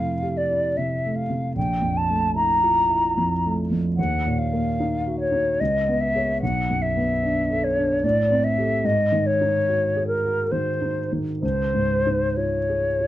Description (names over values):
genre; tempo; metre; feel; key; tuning
classical, impressionist duo for flute and grand piano; 63-76 BPM; 3/4; rubato; unclear; A4 = 438 Hz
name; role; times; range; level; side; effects
mellow hollow silver concert flute; melody; 0.0-13.1 s; Bb4 to Bb5; -22 LUFS; left 1 dB; none
dark grand piano; accompaniment; 0.0-13.1 s; Bb1 to Db5; -24 LUFS; right 1 dB; none
room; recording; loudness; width
light reverb; dark, warm production; -20 LUFS; side -14 dB against mid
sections
0.0-13.1 A section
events
none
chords
0.0 Fmaj9; 1.6 Bb5; 4.0 Ebm; 5.6 Dbm7; 6.4 Cbm7; 8.0 Am7; 8.8 Ab7sus4; 11.4 Dbadd9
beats
0.77 | 1.56 2.35 3.16 | 3.98 4.79 5.60 | 6.41 7.22 8.04 | 8.84 9.67 10.52 | 11.42 12.37